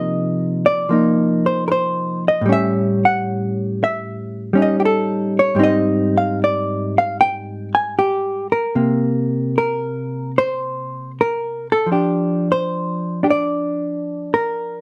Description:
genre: jazz ballad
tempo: 76 BPM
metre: 4/4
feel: swing 68% on 8ths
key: C minor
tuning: A4 = 440 Hz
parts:
  - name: hollow-body jazz guitar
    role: solo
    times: 0.0-14.8 s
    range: Ab2 to Ab5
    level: -19 LUFS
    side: equal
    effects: none
room: light reverb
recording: none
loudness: -19 LUFS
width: mono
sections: 0.0-14.8 A section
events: none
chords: 0.0 Cm11; 2.4 A7#11; 5.6 Abmaj7; 8.7 C7(no3); 11.9 Fsus2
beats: 0.09 0.88 1.67 | 2.45 3.23 4.02 4.80 | 5.59 6.38 7.16 7.95 | 8.74 9.53 10.32 11.12 | 11.91 12.70 13.49 14.29

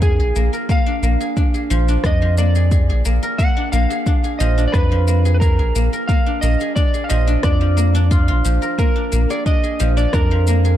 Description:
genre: organic downtempo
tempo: 89 BPM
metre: 4/4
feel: straight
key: unclear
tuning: A4 = 440 Hz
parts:
  - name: electric slide guitar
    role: melody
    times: 0.0-10.8 s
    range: Ab4 to Gb5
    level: -24 LUFS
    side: right 1 dB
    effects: digital delay
  - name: guzheng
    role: arpeggios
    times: 0.0-10.8 s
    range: F3 to Bb4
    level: -22 LUFS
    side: left 1 dB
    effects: digital delay
  - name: round analog bass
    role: bass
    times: 0.0-10.8 s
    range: Bb1 to F2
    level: -16 LUFS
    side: equal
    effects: tube saturation, sidechain pumping
  - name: electronic kick drum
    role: drums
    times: 0.0-10.3 s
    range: none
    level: -17 LUFS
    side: equal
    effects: studio reverb
  - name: electronic shaker and rim click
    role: drums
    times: 0.0-10.8 s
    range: none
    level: -30 LUFS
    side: left 2 dB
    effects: studio reverb
room: little or no reverb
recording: dark, warm production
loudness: -14 LUFS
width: side -12 dB against mid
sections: 0.0-10.8 A section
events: none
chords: 0.0 Bb7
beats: 0.02 | 0.70 1.37 2.04 2.72 | 3.39 4.07 4.74 5.42 | 6.09 6.76 7.44 8.11 | 8.79 9.46 10.13

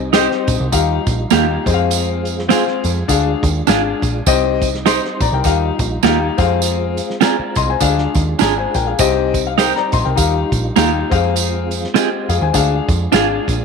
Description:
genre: uptempo 1960s-style soul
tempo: 102 BPM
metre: 4/4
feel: swing 58% on 8ths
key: unclear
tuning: A4 = 440 Hz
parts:
  - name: percussive tonewheel organ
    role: sustained chords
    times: 0.0-13.6 s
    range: G3 to F4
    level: -26 LUFS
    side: right 1 dB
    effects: chorus vibrato, fast rotary speaker
  - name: overdriven picked electric bass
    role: bass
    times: 0.0-13.6 s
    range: Ab1 to F2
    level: -20 LUFS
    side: right 1 dB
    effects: none
  - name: clear grand piano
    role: accompaniment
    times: 0.1-13.5 s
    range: C4 to C6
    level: -18 LUFS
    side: left 12 dB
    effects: none
  - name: clean electric guitar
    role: stabs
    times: 0.1-13.3 s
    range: Bb3 to C5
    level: -18 LUFS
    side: right 14 dB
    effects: none
  - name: warm soul drum kit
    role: drums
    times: 0.1-13.6 s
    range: hi-hat, kick drum, snare drum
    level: -20 LUFS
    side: right 1 dB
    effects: none
  - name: tambourine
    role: percussion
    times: 0.1-13.6 s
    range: none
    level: -26 LUFS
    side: right 19 dB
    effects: none
room: moderate spring reverb, RT60 2.7 s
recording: 1960s-style stereo with parts hard left and right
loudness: -14 LUFS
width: side -5 dB against mid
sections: 0.0-13.6 A section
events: none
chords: 0.0 Cm; 0.7 Ebadd9; 1.6 Fm; 3.1 Ddim; 4.3 Cm; 5.4 Ebadd9; 6.3 Fm; 7.8 Ddim; 9.0 Cm; 10.2 Ebadd9; 11.1 Fm; 12.5 Ddim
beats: 0.13 0.72 1.31 | 1.90 2.49 3.08 3.67 | 4.26 4.86 5.45 6.04 | 6.63 7.22 7.81 8.40 | 8.99 9.59 10.18 10.77 | 11.36 11.95 12.54 13.13

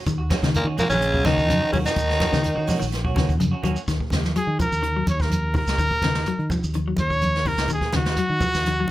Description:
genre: afrobeat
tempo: 126 BPM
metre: 4/4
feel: straight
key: Eb minor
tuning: A4 = 437 Hz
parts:
  - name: clean electric guitar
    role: arpeggios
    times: 0.1-8.9 s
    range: Db3 to Gb3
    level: -28 LUFS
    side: left 5 dB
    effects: none
  - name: fingered electric bass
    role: bass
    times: 0.1-8.9 s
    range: Bb1 to Eb3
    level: -25 LUFS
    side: equal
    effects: none
  - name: jazz brush drum kit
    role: drums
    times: 0.1-8.8 s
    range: hi-hat, kick drum, snare drum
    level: -27 LUFS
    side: equal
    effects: none
  - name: shekere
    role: percussion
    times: 0.1-8.8 s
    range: none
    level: -32 LUFS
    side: right 1 dB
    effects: none
  - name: semi-hollow electric guitar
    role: stabs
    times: 0.2-3.8 s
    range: Bb3 to Gb4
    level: -32 LUFS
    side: right 5 dB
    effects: lush chorus
  - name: congas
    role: percussion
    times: 0.3-8.9 s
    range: none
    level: -28 LUFS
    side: right 2 dB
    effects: none
  - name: breathy tenor saxophone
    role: melody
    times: 0.6-2.8 s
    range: Bb3 to Eb4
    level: -22 LUFS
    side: equal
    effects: none
  - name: breathy trombone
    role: second line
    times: 0.6-2.8 s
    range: Bb2 to Eb3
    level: -32 LUFS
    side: right 2 dB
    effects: none
  - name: raspy baritone saxophone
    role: second line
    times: 0.6-2.8 s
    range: Bb2 to Eb3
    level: -33 LUFS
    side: left 2 dB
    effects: tape echo
  - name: bright trumpet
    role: melody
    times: 4.4-8.9 s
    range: Gb4 to Db5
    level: -24 LUFS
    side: equal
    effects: none
room: light reverb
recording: none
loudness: -20 LUFS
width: side -15 dB against mid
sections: 0.0-3.9 A section; 3.9-8.9 B section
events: trumpet solo 3.9-8.9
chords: 0.0 Ebm7; 3.9 Ebm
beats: | 0.07 0.54 1.02 1.49 | 1.97 2.44 2.92 3.40 | 3.87 4.35 4.83 5.30 | 5.78 6.26 6.74 7.21 | 7.69 8.17 8.65

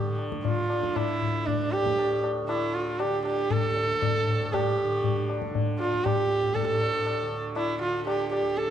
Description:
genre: indian classical, Hindustani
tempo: 118 BPM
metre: 5/4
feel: straight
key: D raga bhimpalasi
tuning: A4 = 444 Hz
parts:
  - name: warm sarangi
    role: melody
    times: 0.0-8.7 s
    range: D4 to A4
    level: -26 LUFS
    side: right 2 dB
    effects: none
  - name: tanpura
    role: drone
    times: 0.0-8.7 s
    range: D2 to D3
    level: -34 LUFS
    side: right 4 dB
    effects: none
  - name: tabla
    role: percussion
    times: 0.2-8.7 s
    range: none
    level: -29 LUFS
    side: left 4 dB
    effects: none
room: moderate recital hall reverb, RT60 1.5 s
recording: dark, warm production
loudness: -24 LUFS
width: side -10 dB against mid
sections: 0.0-8.7 A section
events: none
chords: none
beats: 0.44 0.95 1.47 | 1.98 2.49 3.00 3.51 4.02 | 4.53 5.04 5.54 6.05 6.56 | 7.06 7.57 8.07 8.58

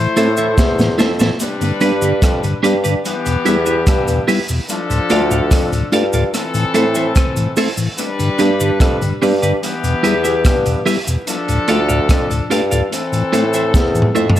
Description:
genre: roots reggae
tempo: 73 BPM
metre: 4/4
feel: straight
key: unclear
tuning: A4 = 441 Hz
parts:
  - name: clear horn section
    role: second line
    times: 0.0-14.1 s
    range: E3 to C5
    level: -21 LUFS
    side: left 3 dB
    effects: tape echo
  - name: mellow tonewheel organ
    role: accompaniment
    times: 0.0-14.4 s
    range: D2 to F4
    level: -20 LUFS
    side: left 2 dB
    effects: chorus vibrato, stopped rotary speaker, tape echo
  - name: clean electric guitar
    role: accompaniment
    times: 0.2-14.4 s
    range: D4 to F5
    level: -21 LUFS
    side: right 5 dB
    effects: tape echo
  - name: mellow bassoon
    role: bass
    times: 0.2-14.4 s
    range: D2 to A2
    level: -18 LUFS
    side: equal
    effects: none
  - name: crunchy breakbeat drum kit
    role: drums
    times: 0.2-14.4 s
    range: hi-hat, kick drum, rim click, snare drum, toms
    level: -18 LUFS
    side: equal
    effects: tape echo
  - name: cabasa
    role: percussion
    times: 0.2-14.4 s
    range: none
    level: -29 LUFS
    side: left 1 dB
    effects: none
room: light reverb, studio reverb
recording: none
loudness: -13 LUFS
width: side -12 dB against mid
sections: 0.0-14.4 A section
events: drum fill 0.6-1.4, 13.7-14.4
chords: 0.0 Am; 1.4 G; 3.0 Em; 4.7 Dm; 6.3 Am; 8.0 G; 9.6 Em; 11.3 Dm; 12.9 Am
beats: 0.58 | 1.41 2.23 3.05 3.87 | 4.70 5.52 6.34 7.16 | 7.98 8.81 9.63 10.45 | 11.27 12.09 12.92 13.74

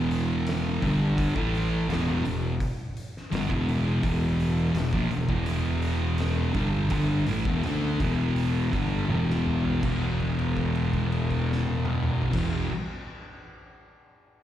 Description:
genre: stoner and doom metal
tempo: 83 BPM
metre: 4/4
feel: straight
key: E minor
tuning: A4 = 443 Hz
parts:
  - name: thick fuzz guitar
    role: riff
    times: 0.0-12.7 s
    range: E2 to D4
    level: -29 LUFS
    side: left 6 dB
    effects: distortion
  - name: thick fuzz guitar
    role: riff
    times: 0.0-12.7 s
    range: E2 to D4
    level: -28 LUFS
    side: right 5 dB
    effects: distortion
  - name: fuzz fingered electric bass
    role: bass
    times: 0.0-12.6 s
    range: E1 to D2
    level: -29 LUFS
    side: equal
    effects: overdrive
  - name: oversized low-tuned drum kit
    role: drums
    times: 0.1-12.5 s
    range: crash cymbal, hi-hat, kick drum, snare drum, toms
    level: -33 LUFS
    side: equal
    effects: none
room: little or no reverb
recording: live gig heard through the venue's PA, recital hall reverb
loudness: -24 LUFS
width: side -11 dB against mid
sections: 0.0-9.8 A section; 9.8-12.8 B section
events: slowing down 4.0-9.8; drum fill 9.1-9.8; held note 9.8-12.3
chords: 0.0 Em; 9.8 E5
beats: 0.46 | 1.18 1.89 2.60 3.32 | 4.03 4.75 5.46 6.18 | 6.91 7.63 8.36 9.09 | 9.82 10.56 11.30 12.04

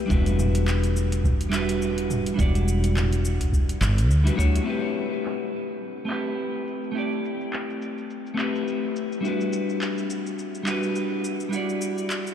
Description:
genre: sunset chillout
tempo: 105 BPM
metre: 4/4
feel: swing 56% on 16ths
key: A minor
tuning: A4 = 440 Hz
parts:
  - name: clean electric guitar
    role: accompaniment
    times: 0.0-12.3 s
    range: G3 to D5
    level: -26 LUFS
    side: moving between left 4 dB and right 2 dB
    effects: auto-pan, ping-pong delay
  - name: woody fretless electric bass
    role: bass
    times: 0.1-4.6 s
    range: E1 to D2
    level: -22 LUFS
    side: equal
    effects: none
  - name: deep house drum kit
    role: drums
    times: 0.1-12.3 s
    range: handclaps, hi-hat, shaker, toms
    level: -34 LUFS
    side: equal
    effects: overdrive, low-pass filter on hats, small room reverb, low-pass filter on perc, low-pass filter on snare, low-pass filter on toms
  - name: electronic kick drum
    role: drums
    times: 0.1-4.5 s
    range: none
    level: -24 LUFS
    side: equal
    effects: small room reverb
room: moderate cathedral reverb, RT60 5.8 s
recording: dreamy mix soaked in reverb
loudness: -22 LUFS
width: side -9 dB against mid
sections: 0.0-4.7 A section; 4.7-12.3 B section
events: filter sweep on drum 4.7-12.3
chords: 0.1 Em9; 4.7 Am9; 9.2 Em9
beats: | 0.10 0.67 1.24 1.81 | 2.38 2.95 3.52 4.09 | 4.67 5.24 5.81 6.38 | 6.95 7.52 8.10 8.67 | 9.24 9.81 10.38 10.95 | 11.52 12.10

